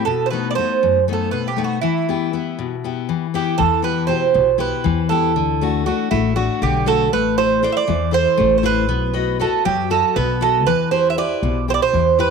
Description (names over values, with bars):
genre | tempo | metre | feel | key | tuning
greek folk, Greek bouzouki band | 238 BPM (eighths) | 7/8 | straight | E minor | A4 = 441 Hz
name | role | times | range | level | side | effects
Greek bouzouki | melody | 0.0-12.3 s | E4 to E5 | -18 LUFS | right 10 dB | none
fingerpicked steel-string acoustic guitar | accompaniment | 0.0-12.3 s | F#2 to D#5 | -21 LUFS | left 12 dB | none
upright bass | bass | 3.6-12.3 s | A1 to F#2 | -23 LUFS | left 1 dB | none
room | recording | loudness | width
light reverb, small room ambience | 1960s-style stereo with parts hard left and right | -16 LUFS | side -5 dB against mid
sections
0.0-3.6 A section; 3.6-12.3 A section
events
none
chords
0.1 B7; 1.8 Em; 5.4 D; 7.1 Am; 8.9 B; 10.7 Em